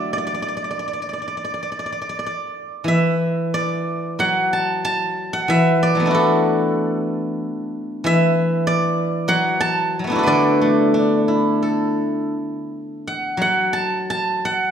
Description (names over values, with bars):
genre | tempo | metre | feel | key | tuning
chinese traditional, Chinese solo plucked strings | 82-97 BPM | 4/4 | rubato | D gong mode | A4 = 443 Hz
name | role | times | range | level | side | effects
steel-string zither | solo | 0.0-14.7 s | D3 to A5 | -18 LUFS | equal | none
room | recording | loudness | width
wet recital hall reverb, RT60 1.5 s | recorded in a church or concert hall | -18 LUFS | side -8 dB against mid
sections
0.0-2.9 A section; 2.9-13.4 B section; 13.4-14.7 C section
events
none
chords
none